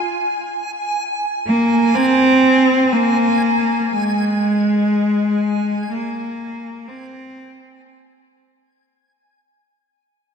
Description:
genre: ambient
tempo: free time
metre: none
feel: none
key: unclear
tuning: A4 = 440 Hz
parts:
  - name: backwards swelling texture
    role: texture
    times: 0.0-9.8 s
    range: Ab5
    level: -24 LUFS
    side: right 3 dB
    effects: built-in reverb, shimmer reverb
  - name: clear cello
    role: melody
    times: 1.5-7.9 s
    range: Ab3 to C4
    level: -16 LUFS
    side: equal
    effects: shimmer reverb, tape echo
room: wet lush hall reverb, RT60 2.5 s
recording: dark, warm production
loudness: -15 LUFS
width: side -6 dB against mid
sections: 0.0-9.8 A section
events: fade-out 0.0-9.8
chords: none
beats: free time

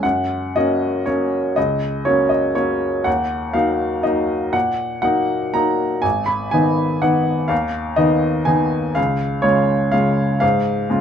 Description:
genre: classical, piano waltz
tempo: 121 BPM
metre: 3/4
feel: uneven beats, rubato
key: F# major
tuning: A4 = 440 Hz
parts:
  - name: clear upright piano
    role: solo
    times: 0.0-11.0 s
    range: G#1 to B5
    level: -16 LUFS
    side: equal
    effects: none
room: light reverb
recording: close, detailed microphones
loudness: -16 LUFS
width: side -8 dB against mid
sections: 0.0-11.0 A section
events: none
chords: 0.0 F#; 3.1 D#m; 6.0 G#m; 9.0 C#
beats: | 0.03 0.55 1.06 | 1.56 2.06 2.56 | 3.06 3.56 4.06 | 4.54 5.03 5.55 | 6.04 6.53 7.03 | 7.51 7.99 8.49 | 8.97 9.45 9.94 | 10.42 10.89

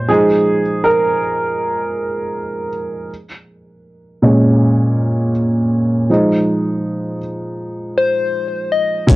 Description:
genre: lo-fi hip hop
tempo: 80 BPM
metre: 4/4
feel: swing 59% on 16ths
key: unclear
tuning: A4 = 440 Hz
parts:
  - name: dark upright piano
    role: accompaniment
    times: 0.0-9.2 s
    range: Bb2 to Db5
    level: -15 LUFS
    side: right 1 dB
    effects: cassette tape, low-pass filter
  - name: soft struck synth lead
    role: melody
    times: 8.0-9.2 s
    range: C5 to Eb5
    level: -16 LUFS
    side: left 4 dB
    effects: chorus, low-pass filter
  - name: tine electric piano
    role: bass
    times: 9.1-9.2 s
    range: Bb1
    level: -16 LUFS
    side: left 1 dB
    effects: transformer saturation, auto-pan
  - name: dusty soul sampler-style drum kit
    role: drums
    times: 9.1-9.2 s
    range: hi-hat, kick drum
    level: -9 LUFS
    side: equal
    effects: none
room: light reverb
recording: dry, gritty hardware recording, transformer saturation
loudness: -14 LUFS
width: side -18 dB against mid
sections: 0.0-9.1 A section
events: upright piano solo 0.0-9.1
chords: 0.1 Fm7; 3.1 Bbm7; 6.1 Fm7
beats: | 0.09 0.84 1.59 2.34 | 3.09 3.84 4.59 5.34 | 6.09 6.84 7.59 8.34 | 9.09

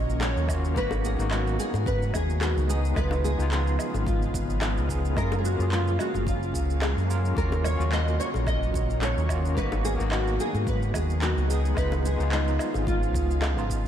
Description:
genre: sunset chillout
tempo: 109 BPM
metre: 4/4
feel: swing 54% on 16ths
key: unclear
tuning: A4 = 439 Hz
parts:
  - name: nylon-string guitar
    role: melody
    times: 0.0-13.7 s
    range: D#4 to D#5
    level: -31 LUFS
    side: equal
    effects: ensemble chorus, analog delay, shimmer reverb
  - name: overdriven tine electric piano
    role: accompaniment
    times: 0.0-13.9 s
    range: G#3 to A#4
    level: -32 LUFS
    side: equal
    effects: fast tremolo, auto-pan, ping-pong delay, shimmer reverb
  - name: shimmering ambient pad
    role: sustained chords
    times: 0.0-13.9 s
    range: C#3 to E#4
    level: -34 LUFS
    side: equal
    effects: chorus, built-in reverb, shimmer reverb
  - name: fingered electric bass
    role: bass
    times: 0.0-13.9 s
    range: F#1 to G#2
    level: -26 LUFS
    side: equal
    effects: none
  - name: electronic shaker, handclaps and woodblock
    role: drums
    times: 0.1-13.9 s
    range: none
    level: -35 LUFS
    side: right 1 dB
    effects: overdrive, small room reverb
  - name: bongos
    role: percussion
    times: 0.2-13.5 s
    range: none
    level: -40 LUFS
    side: left 6 dB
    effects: none
  - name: electronic kick drum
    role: drums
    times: 0.5-13.8 s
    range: none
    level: -32 LUFS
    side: equal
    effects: overdrive, small room reverb
room: light reverb, digital ambience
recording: none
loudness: -23 LUFS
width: side -10 dB against mid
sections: 0.0-13.9 A section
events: none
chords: 0.0 D#m7; 0.8 G#m7; 2.7 C#7; 5.2 F#maj9; 7.4 D#m7; 9.6 G#m7; 11.5 C#7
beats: 0.21 | 0.76 1.31 1.86 2.41 | 2.96 3.51 4.06 4.61 | 5.16 5.71 6.26 6.82 | 7.37 7.92 8.47 9.02 | 9.57 10.12 10.67 11.22 | 11.77 12.32 12.87 13.42

